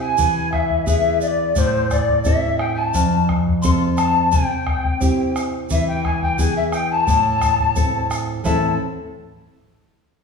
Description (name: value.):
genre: andean folk, Andean ensemble.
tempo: 87 BPM.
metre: 2/4.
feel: straight.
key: A minor.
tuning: A4 = 440 Hz.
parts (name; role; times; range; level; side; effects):
polished pan flute; melody; 0.0-8.8 s; C5 to C6; -22 LUFS; left 2 dB; none.
mellow large quena; second line; 0.0-8.8 s; A4 to C6; -24 LUFS; left 5 dB; none.
nylon-string guitar; accompaniment; 0.0-8.8 s; F2 to E5; -22 LUFS; right 2 dB; none.
bombo; percussion; 0.2-8.8 s; none; -22 LUFS; left 2 dB; none.
tube shaker; percussion; 0.2-8.8 s; none; -34 LUFS; right 4 dB; none.
room: wet recital hall reverb, RT60 1.4 s.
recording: studio ambience.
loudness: -16 LUFS.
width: side -5 dB against mid.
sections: 0.0-8.4 A section; 8.4-9.8 B section.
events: none.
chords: 0.2 E; 1.6 Am; 2.9 F; 4.3 C; 5.7 E; 7.1 Am.